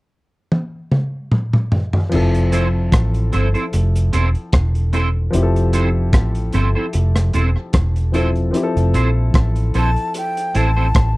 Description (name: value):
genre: lovers rock reggae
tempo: 75 BPM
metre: 4/4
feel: swing 54% on 16ths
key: F major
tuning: A4 = 438 Hz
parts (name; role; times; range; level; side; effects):
- crunchy breakbeat drum kit; drums; 0.5-11.2 s; crash cymbal, hi-hat, kick drum, rim click, toms; -18 LUFS; equal; none
- warm concert grand piano; accompaniment; 2.1-11.2 s; F3 to A4; -23 LUFS; left 2 dB; none
- vintage muted fingered electric bass; bass; 2.1-11.2 s; E1 to Bb1; -16 LUFS; equal; none
- electric guitar at the edge of break-up; stabs; 2.5-10.9 s; C4 to C5; -22 LUFS; right 3 dB; ensemble chorus
- breathy jazz flute; melody; 9.8-11.2 s; G5 to A5; -22 LUFS; left 1 dB; tape echo
room: little or no reverb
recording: dry, close 1970s-style studio recording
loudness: -15 LUFS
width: side -21 dB against mid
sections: 0.0-2.1 A section; 2.1-8.5 B section; 8.5-11.2 C section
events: drum fill 0.5-2.1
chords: 0.0 N.C.; 2.1 Fmaj7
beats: 0.52 1.32 | 2.12 2.93 3.73 4.53 | 5.33 6.13 6.94 7.74 | 8.54 9.34 10.15 10.95